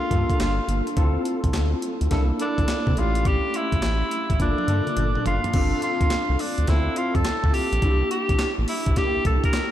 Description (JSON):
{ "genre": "R&B, new jack swing", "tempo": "105 BPM", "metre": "4/4", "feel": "swing 65% on 16ths", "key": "unclear", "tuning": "A4 = 440 Hz", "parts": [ { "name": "clear tenor saxophone", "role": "melody", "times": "0.0-9.7 s", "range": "D4 to Bb4", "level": "-26 LUFS", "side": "equal", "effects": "diffuse ambient delay" }, { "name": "bell-like tine electric piano", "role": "accompaniment", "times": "0.0-9.7 s", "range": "A3 to A4", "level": "-27 LUFS", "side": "left 1 dB", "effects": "ensemble chorus" }, { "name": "round analog bass", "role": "bass", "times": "0.1-9.4 s", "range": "G1 to C3", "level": "-24 LUFS", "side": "equal", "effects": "none" }, { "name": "breakbeat sampler-style drum kit", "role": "drums", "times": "0.1-9.7 s", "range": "crash cymbal, handclaps, hi-hat, kick drum, snare drum, toms", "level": "-25 LUFS", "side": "equal", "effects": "none" } ], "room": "moderate cathedral reverb, RT60 4.9 s", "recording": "dreamy mix soaked in reverb", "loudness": "-20 LUFS", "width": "side -12 dB against mid", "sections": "0.0-5.5 A section; 5.5-9.7 B section", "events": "drum fill 4.4-5.5", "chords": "0.0 Gm7; 1.0 Dm9; 2.1 C13; 3.0 A7; 4.4 Gm7; 5.5 G7sus4; 6.7 Dm7; 7.8 C7" }